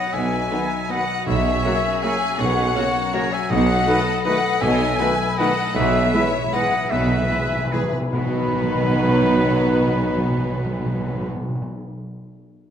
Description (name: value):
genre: classical, orchestral ballroom waltz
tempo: 142-172 BPM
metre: 3/4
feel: rubato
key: B major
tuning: A4 = 440 Hz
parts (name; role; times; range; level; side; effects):
- dark studio violin section; melody; 0.0-11.3 s; B4 to G#5; -28 LUFS; left 5 dB; none
- clear oboe; second line; 0.0-11.3 s; G#4 to E5; -28 LUFS; right 1 dB; none
- hollow concert flute; second line; 0.0-11.3 s; B4 to B5; -27 LUFS; left 2 dB; none
- rich studio violin section; second line; 0.0-11.3 s; D#4 to D#5; -32 LUFS; left 3 dB; none
- concert harp; arpeggios; 0.0-12.0 s; B2 to B5; -30 LUFS; left 8 dB; none
- rich studio cello section; bass; 0.1-11.3 s; B2; -27 LUFS; right 2 dB; none
- rich studio double bass section; bass; 0.1-11.3 s; B1; -29 LUFS; right 4 dB; none
- warm tuba; bass; 0.1-11.3 s; B1; -28 LUFS; right 4 dB; none
- warm studio viola section; accompaniment; 0.5-11.3 s; F#3 to F#4; -28 LUFS; right 1 dB; none
- clear trombone section; sustained chords; 0.5-11.3 s; C#3 to A3; -31 LUFS; right 4 dB; none
- warm French horn section; sustained chords; 0.5-11.3 s; A#3 to G#4; -29 LUFS; left 2 dB; none
- dark trumpet section; stabs; 0.5-11.3 s; B4 to C#5; -29 LUFS; equal; none
- timpani; percussion; 1.3-11.7 s; B2; -26 LUFS; equal; none
room: wet recital hall reverb, RT60 1.7 s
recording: none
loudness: -18 LUFS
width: side -9 dB against mid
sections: 0.0-8.1 A section; 8.1-10.5 B section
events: slowing down 5.2-8.1; timpani fill 5.8-8.1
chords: 0.0 B; 1.3 F#7/B; 3.5 B7; 5.8 E/B; 8.1 B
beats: | 0.14 0.51 0.90 | 1.27 1.64 2.03 | 2.39 2.76 3.14 | 3.51 3.87 4.25 | 4.62 5.00 5.39 | 5.75 6.14 6.54 | 6.91 7.30 7.72 | 8.13 8.52 8.94 | 9.32 9.72 10.13